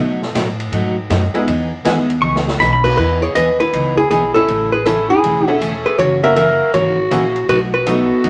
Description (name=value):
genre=country, western swing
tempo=160 BPM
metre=4/4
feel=swing 66% on 8ths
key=E major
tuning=A4 = 440 Hz
part: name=picked steel-string acoustic guitar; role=accompaniment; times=0.0-8.3 s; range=B2 to G#4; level=-25 LUFS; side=equal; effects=none
part: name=upright bass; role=bass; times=0.0-8.3 s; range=E1 to B2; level=-25 LUFS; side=equal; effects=none
part: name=swinging big-band drum kit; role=drums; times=0.2-8.3 s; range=crash cymbal, hi-hat, kick drum, ride cymbal, snare drum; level=-28 LUFS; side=equal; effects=none
part: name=tack piano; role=accompaniment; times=1.3-2.1, 4.3-8.3 s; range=G#3 to A#4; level=-21 LUFS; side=equal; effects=none
part: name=pedal steel guitar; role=second line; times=2.2-3.0 s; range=B5 to C#6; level=-18 LUFS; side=equal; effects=none
part: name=archtop guitar, miked and amplified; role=melody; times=2.8-8.3 s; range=G#4 to E5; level=-18 LUFS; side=equal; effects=none
part: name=growling clarinet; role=second line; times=2.9-8.3 s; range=E4 to B4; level=-20 LUFS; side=equal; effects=none
room=wet studio ambience, RT60 0.5 s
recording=none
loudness=-15 LUFS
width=mono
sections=0.0-3.0 A section; 3.0-8.3 B section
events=pedal steel guitar solo 0.0-3.0; drum fill 2.2-2.6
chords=0.0 B7; 1.5 Emaj7; 4.5 Amaj7; 6.0 F#7; 7.5 B7